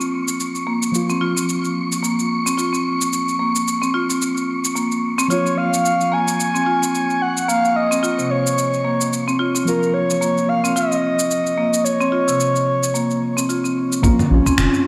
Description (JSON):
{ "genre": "organic downtempo", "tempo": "110 BPM", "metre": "4/4", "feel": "swing 57% on 16ths", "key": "Bb minor", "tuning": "A4 = 440 Hz", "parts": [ { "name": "mellow tine electric piano", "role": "accompaniment", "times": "0.0-14.4 s", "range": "F3 to F4", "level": "-30 LUFS", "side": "equal", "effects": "sidechain pumping, low-pass filter, digital delay" }, { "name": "marimba with medium hard mallets", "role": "arpeggios", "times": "0.0-14.9 s", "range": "C3 to F4", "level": "-23 LUFS", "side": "equal", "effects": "low-pass filter, digital delay" }, { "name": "dusty soul sampler-style drum kit", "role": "drums", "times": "0.0-14.8 s", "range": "cabasa, finger snaps, toms", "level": "-27 LUFS", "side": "equal", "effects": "gated reverb" }, { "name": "wind-like tuned noise texture", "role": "texture", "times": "0.0-14.0 s", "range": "Db6", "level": "-30 LUFS", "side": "equal", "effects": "built-in reverb" }, { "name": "breathy flute-like synth lead", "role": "melody", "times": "5.3-14.9 s", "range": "Bb3 to Ab5", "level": "-22 LUFS", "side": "equal", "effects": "chorus, tremolo, digital delay" }, { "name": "round analog bass", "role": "bass", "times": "14.0-14.7 s", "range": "F1 to Bb1", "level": "-19 LUFS", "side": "equal", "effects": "sidechain pumping" }, { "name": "electronic kick drum", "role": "drums", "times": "14.0-14.6 s", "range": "none", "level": "-20 LUFS", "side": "equal", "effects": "none" } ], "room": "wet lush hall reverb, RT60 1.6 s", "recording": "bright 1980s-style digital production", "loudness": "-19 LUFS", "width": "mono", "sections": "0.0-14.0 A section", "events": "filter sweep on tine electric piano 0.0-14.0", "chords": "0.0 Bbm" }